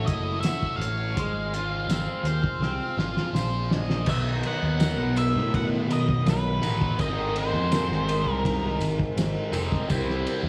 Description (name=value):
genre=psychedelic rock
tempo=82 BPM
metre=4/4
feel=straight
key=unclear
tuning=A4 = 439 Hz
part: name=octave-fuzz lead guitar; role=melody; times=0.0-8.8 s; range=B4 to F#5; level=-33 LUFS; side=equal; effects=distortion, slapback echo
part: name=combo organ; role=sustained chords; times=0.0-10.5 s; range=D#3 to C#5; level=-39 LUFS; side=equal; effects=none
part: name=biting overdriven guitar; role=riff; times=0.0-10.5 s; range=G#2 to D#5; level=-32 LUFS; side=equal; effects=phaser
part: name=fuzz picked electric bass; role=bass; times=0.0-10.5 s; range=E#1 to B2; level=-31 LUFS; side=equal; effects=overdrive
part: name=cloth-damped thuddy drum kit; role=drums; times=0.1-10.4 s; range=crash cymbal, hi-hat, kick drum, ride cymbal, snare drum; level=-31 LUFS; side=equal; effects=none
part: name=tambourine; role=percussion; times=0.4-10.1 s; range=none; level=-47 LUFS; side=equal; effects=none
room=light reverb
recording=studio reverb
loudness=-26 LUFS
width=mono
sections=0.0-4.1 A section; 4.1-10.5 B section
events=drum fill 2.6-4.1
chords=0.0 A6; 1.2 G#6; 4.1 B; 7.0 G#add9; 9.9 C